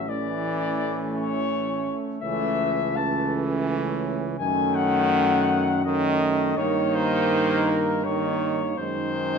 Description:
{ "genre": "classical, hymn-like piece for brass band", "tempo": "82 BPM", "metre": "3/4", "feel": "rubato", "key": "unclear", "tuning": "A4 = 440 Hz", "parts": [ { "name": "mellow flugelhorn", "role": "melody", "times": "0.0-9.4 s", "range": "A#4 to A5", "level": "-26 LUFS", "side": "left 6 dB", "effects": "none" }, { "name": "warm French horn section", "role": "second line", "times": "0.0-9.4 s", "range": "C#4 to D#4", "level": "-30 LUFS", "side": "right 6 dB", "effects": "none" }, { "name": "clear trombone", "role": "accompaniment", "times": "0.0-9.4 s", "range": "D#3 to E3", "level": "-29 LUFS", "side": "right 5 dB", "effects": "none" }, { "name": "mellow trombone section", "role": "accompaniment", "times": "0.0-9.4 s", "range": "G#3 to A#3", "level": "-30 LUFS", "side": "left 1 dB", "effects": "none" }, { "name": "mellow tuba", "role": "bass", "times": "0.0-9.4 s", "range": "A1 to G2", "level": "-29 LUFS", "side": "equal", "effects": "none" } ], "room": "wet recital hall reverb, RT60 1.7 s", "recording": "none", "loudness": "-22 LUFS", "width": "side -6 dB against mid", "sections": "0.0-9.4 A section", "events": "none", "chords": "0.1 A; 2.2 A/C#; 4.4 D#m7b5/F#; 6.6 D#7/G; 8.8 G#7/F#" }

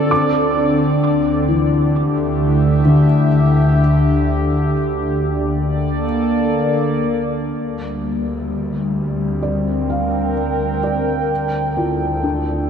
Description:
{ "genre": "ambient", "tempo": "64 BPM", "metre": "4/4", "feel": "straight", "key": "unclear", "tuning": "A4 = 440 Hz", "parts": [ { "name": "warbly tape-like pad", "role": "sustained chords", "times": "0.0-12.7 s", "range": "D2 to G5", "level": "-17 LUFS", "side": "equal", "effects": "chorus, built-in reverb, phaser" }, { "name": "felt-muted upright piano", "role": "arpeggios", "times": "0.0-12.7 s", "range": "D3 to E6", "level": "-20 LUFS", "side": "left 1 dB", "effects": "tape echo" }, { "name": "analog drone", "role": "drone", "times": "0.0-12.7 s", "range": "D3 to D4", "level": "-25 LUFS", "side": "equal", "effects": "chorus" }, { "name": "bright studio double bass section", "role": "bass", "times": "7.5-12.7 s", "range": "D2", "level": "-26 LUFS", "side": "equal", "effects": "none" } ], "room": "wet cathedral reverb, RT60 5.7 s", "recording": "none", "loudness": "-15 LUFS", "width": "side -7 dB against mid", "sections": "0.0-7.5 A section; 7.5-12.7 B section", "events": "none", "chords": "0.1 Dsus24; 3.8 Bbmaj7/D; 7.5 C7sus4/D; 11.3 Fmaj9/D" }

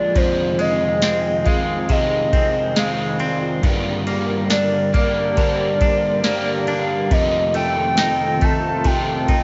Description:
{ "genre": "dream pop", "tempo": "69 BPM", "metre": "4/4", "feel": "straight", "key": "F dorian", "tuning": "A4 = 440 Hz", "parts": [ { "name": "hollow clarinet-like synth lead", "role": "melody", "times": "0.0-9.4 s", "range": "C5 to A5", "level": "-23 LUFS", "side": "equal", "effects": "chorus" }, { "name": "overdriven semi-hollow guitar", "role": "accompaniment", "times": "0.0-9.4 s", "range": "F2 to G4", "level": "-28 LUFS", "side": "equal", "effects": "harmonic tremolo, ensemble chorus" }, { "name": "warbly tape-like pad", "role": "sustained chords", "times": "0.0-9.4 s", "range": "D3 to Bb4", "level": "-28 LUFS", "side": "equal", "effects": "chorus, built-in reverb" }, { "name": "direct-recorded clean electric guitar", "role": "arpeggios", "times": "0.0-9.4 s", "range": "F2 to Eb4", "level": "-27 LUFS", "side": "equal", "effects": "lush chorus, tape echo" }, { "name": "soft vintage rhythm box", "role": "drums", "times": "0.2-9.4 s", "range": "kick drum, ride cymbal, snare drum, tambourine", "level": "-23 LUFS", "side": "equal", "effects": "overdrive" }, { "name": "vibraphone with soft mallets", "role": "texture", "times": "0.2-9.4 s", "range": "F4 to A5", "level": "-35 LUFS", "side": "equal", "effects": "none" } ], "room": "moderate plate reverb, RT60 2.7 s", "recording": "worn, warbling old tape, cassette tape, warbly pitch drift, nothing above 7.7 kHz", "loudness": "-19 LUFS", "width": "mono", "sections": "0.0-9.4 A section", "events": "none", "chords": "0.2 Fm7; 3.6 Gm; 7.1 F7" }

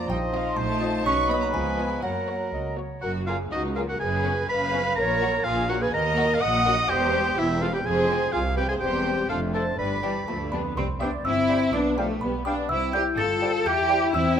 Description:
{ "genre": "cinematic, playful, whimsical film cue", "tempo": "124 BPM", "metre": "2/4", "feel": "straight", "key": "F# major, C major from 6.9 s", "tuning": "A4 = 440 Hz", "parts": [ { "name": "music box", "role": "melody", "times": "0.0-2.5, 10.0-14.4 s", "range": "F5 to A6", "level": "-30 LUFS", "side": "right 2 dB", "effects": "none" }, { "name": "warm studio violin section", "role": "melody", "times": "0.0-14.4 s", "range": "A#3 to G5", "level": "-36 LUFS", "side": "left 5 dB", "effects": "none" }, { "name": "clear oboe", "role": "second line", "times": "0.0-14.0 s", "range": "A#4 to D#6", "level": "-28 LUFS", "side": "right 1 dB", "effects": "none" }, { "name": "mellow clarinet", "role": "second line", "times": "0.0-14.0 s", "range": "D#4 to D#5", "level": "-34 LUFS", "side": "left 2 dB", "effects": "none" }, { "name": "mellow large flute ensemble", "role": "second line", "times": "0.0-14.4 s", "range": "F#4 to C6", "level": "-31 LUFS", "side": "right 1 dB", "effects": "none" }, { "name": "warm studio violin section", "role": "second line", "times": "0.0-14.4 s", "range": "F#4 to C#6", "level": "-34 LUFS", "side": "left 2 dB", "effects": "none" }, { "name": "warm bassoon", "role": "accompaniment", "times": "0.0-2.8, 11.0-14.4 s", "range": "E#3 to G3", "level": "-33 LUFS", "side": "right 2 dB", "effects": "none" }, { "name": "warm studio viola section", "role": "accompaniment", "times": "0.0-14.4 s", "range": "G3 to D#5", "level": "-32 LUFS", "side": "right 2 dB", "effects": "none" }, { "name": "mellow French horn section", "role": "sustained chords", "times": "0.0-14.4 s", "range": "E3 to F4", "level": "-30 LUFS", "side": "left 5 dB", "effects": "none" }, { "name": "clear studio cello section", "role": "bass", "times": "0.0-14.4 s", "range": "C2 to A4", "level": "-30 LUFS", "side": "right 1 dB", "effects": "none" }, { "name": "rich studio double bass section", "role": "bass", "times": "0.1-14.4 s", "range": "E1 to F#2", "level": "-31 LUFS", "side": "right 2 dB", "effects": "none" } ], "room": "moderate concert hall reverb, RT60 2.1 s", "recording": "none", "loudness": "-22 LUFS", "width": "side -8 dB against mid", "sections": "0.0-3.0 A section; 3.0-10.8 B section; 10.8-14.4 C section", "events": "none", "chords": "0.1 F7/Bb; 1.1 B; 1.5 C#9; 2.0 F#; 4.0 C#7/F# (rootless); 5.0 F#/A#; 5.9 D#m; 6.9 C/E; 7.8 Fm; 8.8 C/E; 9.3 Dm/F; 9.8 G; 10.8 C; 11.7 G7/B; 12.7 C; 13.7 C/E" }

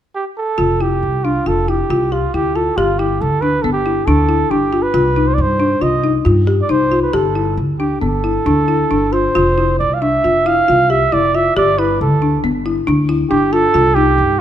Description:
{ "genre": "contemporary instrumental, contemporary", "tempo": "137 BPM", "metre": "5/4", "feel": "straight", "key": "G mixolydian", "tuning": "A4 = 439 Hz", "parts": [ { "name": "warm flugelhorn", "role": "melody", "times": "0.1-14.4 s", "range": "F4 to F5", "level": "-17 LUFS", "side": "right 3 dB", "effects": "none" }, { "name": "folk marimba with medium mallets", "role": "arpeggios", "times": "0.6-14.3 s", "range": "B3 to G4", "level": "-17 LUFS", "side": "left 3 dB", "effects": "none" }, { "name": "upright bass", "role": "bass", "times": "0.6-14.4 s", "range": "F1 to G2", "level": "-19 LUFS", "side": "equal", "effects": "none" } ], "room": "moderate recital hall reverb, RT60 1.6 s", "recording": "none", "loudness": "-13 LUFS", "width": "side -10 dB against mid", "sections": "0.6-14.4 A section", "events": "none", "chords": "0.0 N.C.; 0.6 Fsus2; 2.8 Gsus2; 4.9 Cm; 7.1 Gsus2; 9.4 F5; 11.6 Gsus2; 13.7 Cm" }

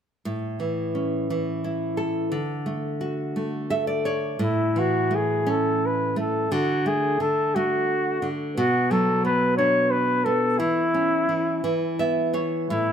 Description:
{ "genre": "children's music, lullaby", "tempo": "58 BPM (dotted quarters)", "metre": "6/8", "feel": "rubato", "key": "A major", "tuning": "A4 = 441 Hz", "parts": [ { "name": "nylon-string guitar", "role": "accompaniment", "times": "0.3-12.9 s", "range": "A2 to E5", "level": "-24 LUFS", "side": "right 1 dB", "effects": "none" }, { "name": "warm flugelhorn", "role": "melody", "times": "4.4-12.9 s", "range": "E4 to C#5", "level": "-22 LUFS", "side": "left 1 dB", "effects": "none" } ], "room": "light reverb", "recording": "close, detailed microphones", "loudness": "-21 LUFS", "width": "side -8 dB against mid", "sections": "0.3-4.4 A section; 4.4-12.9 B section", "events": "nylon-string guitar fill 3.4-4.4, 11.6-12.7", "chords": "0.3 A; 2.3 D; 4.4 A; 6.5 D; 8.6 Bm; 10.6 C#m/E; 11.6 E5" }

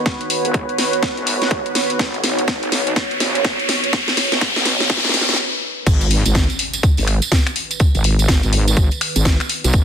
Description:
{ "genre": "bass house", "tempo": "124 BPM", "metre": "4/4", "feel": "swing 62% on 16ths", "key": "G# minor", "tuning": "A4 = 440 Hz", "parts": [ { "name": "sweeping resonant pad", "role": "sustained chords", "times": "0.0-9.8 s", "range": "D#3 to C#5", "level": "-27 LUFS", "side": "right 2 dB", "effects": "chorus, sidechain pumping" }, { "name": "riser and impact", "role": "sound effects", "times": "1.2-7.8 s", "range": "none", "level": "-22 LUFS", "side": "left 1 dB", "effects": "none" }, { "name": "warbly tape-like pad", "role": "texture", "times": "0.0-5.4 s", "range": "D#4 to C#5", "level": "-25 LUFS", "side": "right 3 dB", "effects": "chorus, built-in reverb, phaser, sidechain pumping" }, { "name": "electronic kick drum", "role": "drums", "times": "0.1-9.8 s", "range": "none", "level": "-16 LUFS", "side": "equal", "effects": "studio reverb" }, { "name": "garage drum kit", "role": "drums", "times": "0.1-9.8 s", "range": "crash cymbal, finger snaps, hi-hat, snare drum", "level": "-20 LUFS", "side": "left 1 dB", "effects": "studio reverb" }, { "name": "wobble bass", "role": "bass", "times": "0.4-9.8 s", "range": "F#1 to B1", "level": "-20 LUFS", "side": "equal", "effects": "chorus, overdrive, sidechain pumping, high-pass filter" }, { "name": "tambourine", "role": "percussion", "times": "5.9-9.8 s", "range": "none", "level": "-25 LUFS", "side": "right 7 dB", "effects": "none" } ], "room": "light reverb, digital ambience", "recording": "dense, heavily limited modern master, high-pass filter", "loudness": "-15 LUFS", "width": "side -8 dB against mid", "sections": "0.0-5.9 A section; 5.9-9.8 B section", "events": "build-up 0.0-5.9; drum fill 0.0-5.4; filter sweep 0.0-5.9; riser 1.2-5.4; stop 5.4-5.9; drop 5.9-9.8; impact 5.9-7.8", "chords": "0.0 G#m" }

